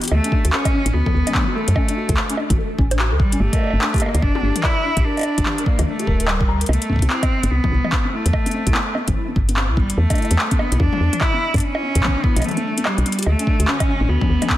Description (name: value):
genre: IDM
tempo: 146 BPM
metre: 4/4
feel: swing 62% on 16ths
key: D major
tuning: A4 = 440 Hz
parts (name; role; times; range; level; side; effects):
- soft string machine; sustained chords; 0.0-0.1, 13.7-14.6 s; D3 to G4; -34 LUFS; equal; none
- felt-muted upright piano; arpeggios; 0.0-14.6 s; B3 to Bb5; -28 LUFS; left 2 dB; tape echo
- electro analog drum machine; drums; 0.0-14.6 s; bongos, handclaps, hi-hat, toms; -23 LUFS; left 1 dB; none
- rich cello; melody; 0.1-14.6 s; G3 to E4; -23 LUFS; equal; digital delay
- woody FM bass; bass; 0.1-14.4 s; D1 to G2; -18 LUFS; equal; none
- electronic kick drum; drums; 0.3-14.6 s; none; -20 LUFS; equal; none
room: little or no reverb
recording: dense, heavily limited modern master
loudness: -16 LUFS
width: side -14 dB against mid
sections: 0.1-14.6 A section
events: kick drops out 12.4-13.3; drum fill 13.1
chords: 0.1 D; 3.4 Gm; 6.7 Cmaj7; 10.0 E7(no3); 13.3 Dmaj7